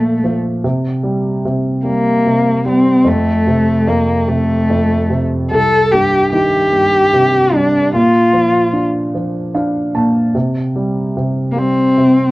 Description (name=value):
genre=acoustic folk-pop ballad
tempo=50 BPM (dotted quarters)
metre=6/8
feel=straight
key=unclear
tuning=A4 = 440 Hz
part: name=dark cello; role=melody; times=0.0-12.3 s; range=A3 to A4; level=-12 LUFS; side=left 1 dB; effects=none
part: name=warm baby grand piano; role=accompaniment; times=0.0-12.3 s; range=C2 to A5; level=-16 LUFS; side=right 1 dB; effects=none
room=moderate studio reverb, RT60 0.6 s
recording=worn, warbling old tape, cassette tape, warbly pitch drift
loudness=-12 LUFS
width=side -19 dB against mid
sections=0.0-12.3 A section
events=none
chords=0.0 Bb5; 0.6 C5; 3.1 F; 5.5 Cm; 7.9 Bb; 10.3 C5